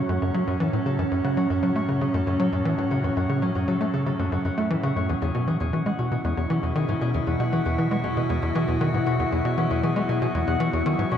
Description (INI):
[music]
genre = ambient, sequencer-driven space music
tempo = 117 BPM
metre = 4/4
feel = straight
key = unclear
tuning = A4 = 439 Hz
[part]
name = evolving wavetable pad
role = sustained chords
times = 0.0-11.2 s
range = A2 to F#4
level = -26 LUFS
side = right 1 dB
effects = chorus, built-in reverb
[part]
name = concert harp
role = arpeggios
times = 0.0-11.2 s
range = C#4 to F#5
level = -33 LUFS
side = left 4 dB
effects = auto-pan, ping-pong delay
[part]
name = analog drone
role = bass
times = 0.0-11.2 s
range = E2 to F#2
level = -41 LUFS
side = left 1 dB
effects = none
[part]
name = tight sequencer bass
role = riff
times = 0.1-11.2 s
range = E2 to A3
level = -24 LUFS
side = left 1 dB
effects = analog chorus, ping-pong delay
[sound]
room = moderate spring reverb, RT60 2.4 s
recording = echo-heavy mix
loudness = -22 LUFS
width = side -9 dB against mid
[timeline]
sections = 0.0-11.2 A section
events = fade-in on harp 0.0-11.2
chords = 0.0 F#m; 5.1 Eadd9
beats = 0.47 | 0.99 1.50 2.01 2.52 | 3.04 3.55 4.06 4.58 | 5.09 5.60 6.12 6.63 | 7.14 7.65 8.17 8.68 | 9.19 9.71 10.22 10.73